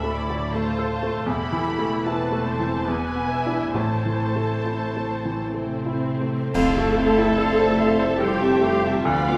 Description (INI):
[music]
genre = classical, romantic movement for piano and orchestra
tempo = 56-81 BPM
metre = 3/4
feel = rubato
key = unclear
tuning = A4 = 441 Hz
[part]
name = clear baby grand piano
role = melody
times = 0.0-9.4 s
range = D2 to E5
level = -27 LUFS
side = equal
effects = none
[part]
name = muted symphonic violin section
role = melody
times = 0.0-9.4 s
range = C5 to B5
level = -34 LUFS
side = equal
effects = none
[part]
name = muted chamber violin section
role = second line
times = 0.0-9.4 s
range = B3 to D6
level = -35 LUFS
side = equal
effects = none
[part]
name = muted symphonic viola section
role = accompaniment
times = 0.0-9.4 s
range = C4 to E5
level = -29 LUFS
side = equal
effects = none
[part]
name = muted chamber cello section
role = bass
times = 0.0-9.4 s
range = D2 to A3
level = -32 LUFS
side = equal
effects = none
[part]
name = muted symphonic double bass section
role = bass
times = 0.0-9.4 s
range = E1 to F2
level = -35 LUFS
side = equal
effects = none
[part]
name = timpani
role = percussion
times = 1.3-5.1 s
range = E2 to A2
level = -37 LUFS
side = equal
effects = none
[part]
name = cymbal swell, clash cymbals and concert bass drum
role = percussion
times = 3.8-8.2 s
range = none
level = -36 LUFS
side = equal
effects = none
[part]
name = small flute group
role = second line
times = 6.5-9.4 s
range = C5 to F5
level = -32 LUFS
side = equal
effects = none
[part]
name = warm French horn section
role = sustained chords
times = 6.5-9.4 s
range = B3 to E4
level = -33 LUFS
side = equal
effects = none
[part]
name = mellow tuba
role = bass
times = 6.5-9.4 s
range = F1 to D2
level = -33 LUFS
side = equal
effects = none
[sound]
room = wet recital hall reverb, RT60 1.6 s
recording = recorded in a church or concert hall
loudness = -23 LUFS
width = mono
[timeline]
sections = 0.0-6.5 A section; 6.5-9.4 B section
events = band accent 6.5-7.4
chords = 0.0 Dm7; 1.3 Am/E; 2.9 E7; 3.8 Am; 6.5 Fmaj7